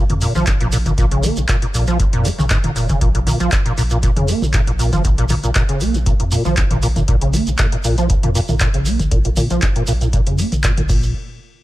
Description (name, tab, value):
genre	acid house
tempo	118 BPM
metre	4/4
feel	straight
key	Bb minor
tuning	A4 = 441 Hz
part	deep acid bass	riff	0.0-11.1 s	Bb1 to Bb3	-19 LUFS	right 1 dB	tube saturation, ensemble chorus, sidechain pumping, digital delay
part	saturated sub bass	bass	0.0-11.1 s	F1 to F2	-20 LUFS	equal	tube saturation, sidechain pumping
part	booming analog drum machine	drums	0.1-11.0 s	crash cymbal, handclaps, hi-hat, toms	-23 LUFS	equal	none
part	shekere	percussion	0.2-11.1 s	none	-29 LUFS	right 3 dB	none
part	electronic kick drum	drums	0.5-11.0 s	none	-18 LUFS	equal	none
room	little or no reverb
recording	none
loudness	-14 LUFS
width	side -16 dB against mid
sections	0.0-11.1 A section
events	none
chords	0.0 Bb5; 10.9 N.C.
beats	0.47 | 0.98 1.49 2.00 2.50 | 3.01 3.52 4.03 4.54 | 5.05 5.55 6.06 6.57 | 7.08 7.59 8.10 8.61 | 9.11 9.62 10.13 10.64